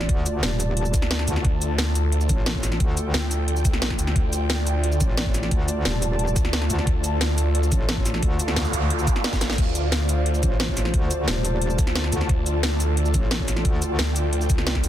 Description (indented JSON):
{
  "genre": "dark technical drum and bass",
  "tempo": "177 BPM",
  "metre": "4/4",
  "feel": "straight",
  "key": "D minor",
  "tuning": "A4 = 440 Hz",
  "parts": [
    { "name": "dark analog pad", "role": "sustained chords", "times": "0.0-14.9 s", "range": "A3 to D5", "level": "-31 LUFS", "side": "left 2 dB", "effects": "chorus, vintage 12-bit sampler grit, sidechain pumping" },
    { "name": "metallic wobble bass", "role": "bass", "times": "0.0-14.0 s", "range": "Eb1 to D2", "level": "-25 LUFS", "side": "equal", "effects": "chorus" },
    { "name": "drum and bass drum kit", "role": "drums", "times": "0.0-14.9 s", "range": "cabasa, crash cymbal, hi-hat, snare drum", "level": "-26 LUFS", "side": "equal", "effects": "none" },
    { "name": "impact and noise sweep", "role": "sound effects", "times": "0.0-0.1, 8.4-9.6 s", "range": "none", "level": "-34 LUFS", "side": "right 5 dB", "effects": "none" },
    { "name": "ethereal airy pad", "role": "texture", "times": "0.0-14.9 s", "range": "F4 to A5", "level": "-31 LUFS", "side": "right 1 dB", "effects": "ensemble chorus, built-in reverb, tremolo, sidechain pumping" },
    { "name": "electronic kick drum", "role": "drums", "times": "0.1-14.8 s", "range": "none", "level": "-23 LUFS", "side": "equal", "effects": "none" },
    { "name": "snarling distorted saw bass", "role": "bass", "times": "0.9-14.9 s", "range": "A1 to D2", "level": "-23 LUFS", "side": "equal", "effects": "overdrive, sidechain pumping" }
  ],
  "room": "little or no reverb",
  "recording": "dense, heavily limited modern master",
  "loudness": "-20 LUFS",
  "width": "side -12 dB against mid",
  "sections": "0.0-14.9 A section",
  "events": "noise sweep 8.4-9.6; drum fill 9.3",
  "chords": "0.0 Dm",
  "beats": "| 0.09 0.43 0.77 1.11 | 1.45 1.78 2.12 2.46 | 2.80 3.14 3.48 3.82 | 4.16 4.50 4.84 5.17 | 5.51 5.85 6.19 6.53 | 6.87 7.21 7.55 7.89 | 8.23 8.56 8.90 9.24 | 9.58 9.92 10.26 10.60 | 10.94 11.28 11.62 11.96 | 12.29 12.63 12.97 13.31 | 13.65 13.99 14.33 14.67"
}